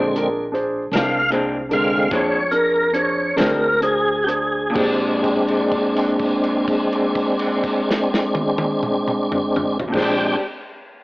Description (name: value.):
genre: slow blues.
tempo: 42-54 BPM (dotted quarters).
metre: 12/8.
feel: straight.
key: Bb mixolydian.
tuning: A4 = 439 Hz.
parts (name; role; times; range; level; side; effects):
warm concert grand piano; accompaniment; 0.0-10.4 s; D4 to C5; -25 LUFS; right 1 dB; cassette tape.
tonewheel organ; sustained chords; 0.0-10.4 s; D3 to G5; -19 LUFS; equal; slow rotary speaker, overdrive, chorus vibrato, cassette tape.
upright bass; bass; 0.0-10.3 s; Bb1 to F2; -33 LUFS; equal; none.
natural country drum kit; drums; 0.2-10.2 s; crash cymbal, hi-hat, kick drum, snare drum, toms; -26 LUFS; equal; cassette tape.
electric guitar through a small old amp; accompaniment; 0.9-10.4 s; Bb2 to G4; -24 LUFS; left 1 dB; tremolo, cassette tape.
room: moderate lush hall reverb, RT60 1.6 s, studio reverb.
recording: home recording on cassette, AM radio sound.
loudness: -17 LUFS.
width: side -22 dB against mid.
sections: 0.0-4.8 A section; 4.8-10.5 B section.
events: slowing down 0.0-4.8; tonewheel organ solo 0.0-4.8; held note 4.8-9.9.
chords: 0.0 Bb9; 4.8 Bb13.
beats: 0.92 2.12 3.38 | 4.76 6.20 7.64 9.08.